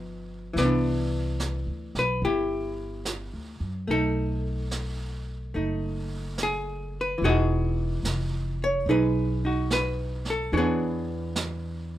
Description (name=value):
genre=jazz ballad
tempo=72 BPM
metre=4/4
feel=swing 69% on 8ths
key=E major from 7.2 s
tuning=A4 = 445 Hz
part: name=archtop guitar, miked and amplified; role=accompaniment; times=0.0-12.0 s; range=E3 to D#5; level=-27 LUFS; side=equal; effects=none
part: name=upright bass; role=bass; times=0.0-12.0 s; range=E1 to F#2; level=-29 LUFS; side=equal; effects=none
part: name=jazz brush drum kit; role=drums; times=0.6-12.0 s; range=brushed snare drum, hi-hat, snare drum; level=-34 LUFS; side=right 3 dB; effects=none
room=moderate club reverb, RT60 0.6 s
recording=minimal, uncompressed stereo recording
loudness=-25 LUFS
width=side -13 dB against mid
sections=0.0-7.2 A section; 7.2-12.0 B section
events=none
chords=0.0 Gaug7; 0.6 Cmaj9; 3.9 B7; 7.2 Emaj9; 10.5 E6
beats=| 0.57 1.40 2.23 3.06 | 3.89 4.72 5.55 6.39 | 7.22 8.05 8.88 9.71 | 10.54 11.37